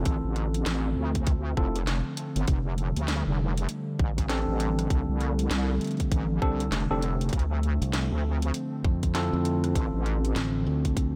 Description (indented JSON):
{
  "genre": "glitch hop",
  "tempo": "99 BPM",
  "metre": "4/4",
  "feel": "swing 62% on 16ths",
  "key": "D minor",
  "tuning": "A4 = 440 Hz",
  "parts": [
    { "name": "warbly tape-like pad", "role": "sustained chords", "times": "0.0-11.2 s", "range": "D3 to C4", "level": "-35 LUFS", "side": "equal", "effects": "chorus, built-in reverb, sidechain pumping" },
    { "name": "tine electric piano", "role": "stabs", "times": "0.0-11.2 s", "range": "C4 to A4", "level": "-36 LUFS", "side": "equal", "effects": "vintage 12-bit sampler grit, sidechain pumping, low-pass filter, diffuse ambient delay" },
    { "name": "wobble bass", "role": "bass", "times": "0.0-10.3 s", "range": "F1 to D2", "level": "-30 LUFS", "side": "equal", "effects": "chorus, tube saturation" },
    { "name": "drum and bass drum kit", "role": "drums", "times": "0.1-11.1 s", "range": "hi-hat, rim click, snare drum", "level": "-38 LUFS", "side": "equal", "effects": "none" },
    { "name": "electronic kick drum", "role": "drums", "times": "0.1-11.1 s", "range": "none", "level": "-28 LUFS", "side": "equal", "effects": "none" },
    { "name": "modern bright fingered electric bass", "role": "bass", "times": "7.8-11.2 s", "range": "A1 to F2", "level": "-30 LUFS", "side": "equal", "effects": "none" }
  ],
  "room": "moderate plate reverb, RT60 2.7 s",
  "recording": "dreamy mix soaked in reverb",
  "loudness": "-27 LUFS",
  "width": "mono",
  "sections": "0.0-11.2 A section",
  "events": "none",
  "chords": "0.0 Dm7; 2.5 F69; 7.3 Dm7",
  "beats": "| 0.06 0.66 1.27 1.88 | 2.48 3.09 3.69 4.30 | 4.91 5.51 6.12 6.72 | 7.33 7.94 8.54 9.15 | 9.75 10.36 10.97"
}